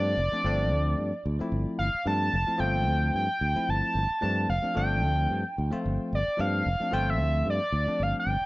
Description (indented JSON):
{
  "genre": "electric jazz fusion",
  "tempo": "111 BPM",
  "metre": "4/4",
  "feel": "swing 54% on 16ths",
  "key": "unclear",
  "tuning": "A4 = 440 Hz",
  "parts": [
    { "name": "overdriven synth lead", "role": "melody", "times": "0.0-8.5 s", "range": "D5 to A5", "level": "-28 LUFS", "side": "right 1 dB", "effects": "distortion" },
    { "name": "barky tine electric piano", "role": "accompaniment", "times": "0.0-8.3 s", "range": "F3 to F4", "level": "-32 LUFS", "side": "left 2 dB", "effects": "none" },
    { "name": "fingered electric bass", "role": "bass", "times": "0.0-8.4 s", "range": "F1 to G2", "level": "-28 LUFS", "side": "equal", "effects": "none" }
  ],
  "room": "light reverb",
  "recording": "dark, warm production",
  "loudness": "-25 LUFS",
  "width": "side -20 dB against mid",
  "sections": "0.0-8.5 A section",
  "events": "none",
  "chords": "0.0 G9sus4"
}